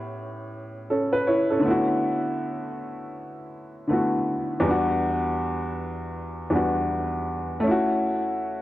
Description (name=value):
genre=hip hop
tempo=80 BPM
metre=4/4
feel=swing 61% on 16ths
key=E dorian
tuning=A4 = 440 Hz
part: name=warm upright piano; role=solo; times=0.0-8.6 s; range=E2 to C#5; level=-23 LUFS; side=equal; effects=low-pass filter, tape echo
room=wet spring reverb, RT60 2.2 s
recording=dark, warm production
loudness=-22 LUFS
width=side -15 dB against mid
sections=0.0-8.6 A section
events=none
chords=0.0 A9; 1.6 D69; 4.6 Em9; 7.6 F#m7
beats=0.15 0.90 | 1.65 2.40 3.15 3.90 | 4.65 5.40 6.15 6.90 | 7.65 8.40